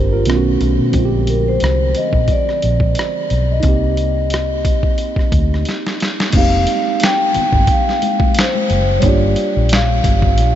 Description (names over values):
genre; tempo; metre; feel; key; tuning
R&B, neo-soul; 89 BPM; 4/4; swing 54% on 16ths; F dorian; A4 = 439 Hz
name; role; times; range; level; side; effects
tine electric piano; accompaniment; 0.0-10.6 s; D3 to C5; -20 LUFS; right 4 dB; overdrive, phaser
vintage muted fingered electric bass; bass; 0.0-10.6 s; F1 to B2; -17 LUFS; equal; none
boom bap sampler-style drum kit; drums; 0.3-10.5 s; crash cymbal, handclaps, hi-hat, kick drum, rim click, snare drum; -18 LUFS; equal; none
vibraphone with soft mallets; melody; 1.3-10.6 s; Bb4 to G5; -19 LUFS; left 2 dB; none
congas; percussion; 6.3-10.5 s; none; -27 LUFS; left 8 dB; none
room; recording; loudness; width
moderate huge ambient reverb, RT60 7.6 s; dreamy mix soaked in reverb, nothing above 7.8 kHz; -13 LUFS; side -11 dB against mid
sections
0.0-6.3 A section; 6.3-10.6 B section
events
drum fill 5.7-6.3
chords
0.3 B9; 0.9 Bb13; 3.6 Cm7; 6.3 Fm11; 9.0 Gm7